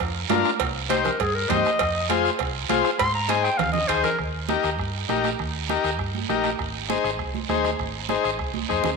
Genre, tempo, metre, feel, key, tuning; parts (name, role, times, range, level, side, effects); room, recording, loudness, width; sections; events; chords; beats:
latin, cumbia; 200 BPM; 4/4; straight; Eb major; A4 = 440 Hz
hollow-body short-scale fingered electric bass; bass; 0.0-9.0 s; Ab1 to Ab2; -31 LUFS; right 2 dB
bombo; percussion; 0.0-9.0 s; -34 LUFS; right 4 dB
congas; percussion; 0.0-8.9 s; -31 LUFS; right 15 dB
cowbell and timbales; percussion; 0.0-4.0 s; -30 LUFS; right 13 dB
guiro; percussion; 0.0-9.0 s; -33 LUFS; right 14 dB
combo organ; accompaniment; 0.3-8.9 s; D4 to C5; -24 LUFS; left 7 dB
clear clarinet; melody; 0.9-4.2 s; Ab4 to C6; -25 LUFS; left 2 dB
wet echo chamber reverb, RT60 1.8 s, small room ambience; 1960s-style stereo with parts hard left and right; -21 LUFS; side -4 dB against mid
0.0-4.2 A section; 4.2-9.0 B section
clarinet solo 0.0-4.2; drum fill 3.3-4.2, 8.5-9.0
0.0 Bb; 0.6 Cm; 1.8 Fm; 3.0 Ab; 4.2 Eb; 6.6 Ab
0.00 0.30 | 0.60 0.90 1.20 1.50 | 1.80 2.10 2.40 2.69 | 2.99 3.29 3.59 3.89 | 4.19 4.49 4.79 5.09 | 5.39 5.69 5.99 6.29 | 6.59 6.89 7.20 7.50 | 7.79 8.10 8.40 8.70